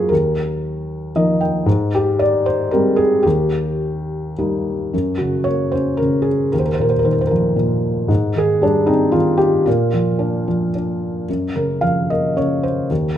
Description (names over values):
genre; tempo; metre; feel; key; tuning
classical, lyrical solo piano; 113 BPM; 3/4; rubato; Eb major; A4 = 440 Hz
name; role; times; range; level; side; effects
felt-muted upright piano; solo; 0.0-13.2 s; Eb2 to G5; -16 LUFS; equal; none
room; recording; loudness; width
moderate recital hall reverb, RT60 1.2 s; minimal, uncompressed stereo recording; -16 LUFS; side -10 dB against mid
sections
0.0-4.9 A section; 4.9-13.2 A section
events
felt piano fill 0.9-1.7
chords
0.1 Ebsus2; 1.7 Abmaj7; 3.3 Eb; 4.9 Gb; 6.5 Ebsus2; 8.1 Abmaj7; 9.7 Bb; 11.3 Gbmaj7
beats
| 0.12 0.63 1.15 | 1.67 2.19 2.72 | 3.26 3.81 4.38 | 4.93 5.48 6.01 | 6.54 7.05 7.58 | 8.10 8.62 9.14 | 9.67 10.20 10.74 | 11.29 11.83 12.37 | 12.90